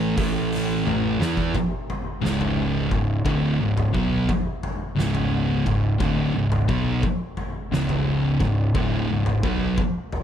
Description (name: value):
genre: stoner and doom metal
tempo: 87 BPM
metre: 4/4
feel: straight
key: C# phrygian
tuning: A4 = 440 Hz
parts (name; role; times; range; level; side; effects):
- thick fuzz guitar; riff; 0.0-9.8 s; C#2 to E4; -25 LUFS; left 7 dB; distortion
- thick fuzz guitar; riff; 0.0-9.8 s; C#2 to E4; -24 LUFS; right 6 dB; distortion
- fuzz picked electric bass; bass; 0.0-9.8 s; C#1 to E2; -28 LUFS; equal; overdrive
- oversized low-tuned drum kit; drums; 0.2-10.2 s; hi-hat, kick drum, snare drum, toms; -27 LUFS; equal; none
room: studio reverb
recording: none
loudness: -20 LUFS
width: side -9 dB against mid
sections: 0.0-1.5 A section; 1.5-10.2 B section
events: drum fill 0.9-1.5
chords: 0.0 A5; 1.5 C#5